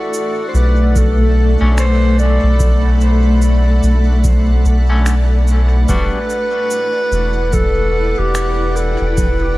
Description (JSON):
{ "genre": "ambient dub", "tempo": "73 BPM", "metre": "4/4", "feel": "swing 60% on 16ths", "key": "E minor", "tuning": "A4 = 440 Hz", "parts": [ { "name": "mellow clarinet", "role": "melody", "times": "0.0-9.6 s", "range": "G4 to D5", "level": "-20 LUFS", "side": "equal", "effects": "dub echo" }, { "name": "granular cloud pad", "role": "sustained chords", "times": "0.0-9.6 s", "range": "A3 to B5", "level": "-20 LUFS", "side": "left 1 dB", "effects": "built-in reverb" }, { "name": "electronic cabasa and finger snaps", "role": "drums", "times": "0.1-9.4 s", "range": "none", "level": "-29 LUFS", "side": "right 1 dB", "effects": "small room ambience, dub echo" }, { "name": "soft dub sub bass", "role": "bass", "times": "0.5-9.6 s", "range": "E1 to B1", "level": "-13 LUFS", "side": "equal", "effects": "none" }, { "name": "electronic kick drum", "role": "drums", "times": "1.0-9.4 s", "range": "none", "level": "-19 LUFS", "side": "equal", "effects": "small room ambience" }, { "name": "clean electric guitar", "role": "stabs", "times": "1.6-6.2 s", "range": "D3 to F#4", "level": "-28 LUFS", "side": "left 2 dB", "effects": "harmonic tremolo, dub echo" } ], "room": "digital ambience", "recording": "vinyl crackle", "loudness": "-12 LUFS", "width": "side -18 dB against mid", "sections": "0.0-5.9 A section; 5.9-9.6 B section", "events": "none", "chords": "0.0 Bm7; 5.9 Em7", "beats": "0.14 0.96 1.78 | 2.60 3.42 4.25 5.07 | 5.89 6.71 7.53 8.36 | 9.18" }